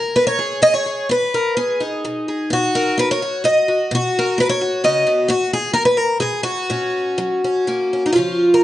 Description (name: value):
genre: folk, solo fingerstyle acoustic guitar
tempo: 128 BPM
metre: 3/4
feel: rubato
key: F# major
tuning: A4 = 439 Hz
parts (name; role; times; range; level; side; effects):
- picked twelve-string acoustic guitar; solo; 0.0-8.6 s; F#2 to D#5; -16 LUFS; equal; none
room: moderate large studio reverb, RT60 1.0 s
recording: nothing above 10.3 kHz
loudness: -16 LUFS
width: side -14 dB against mid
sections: 0.0-8.1 A section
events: none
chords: 0.0 G#m/B; 2.5 B; 5.3 F#/A#; 8.1 C#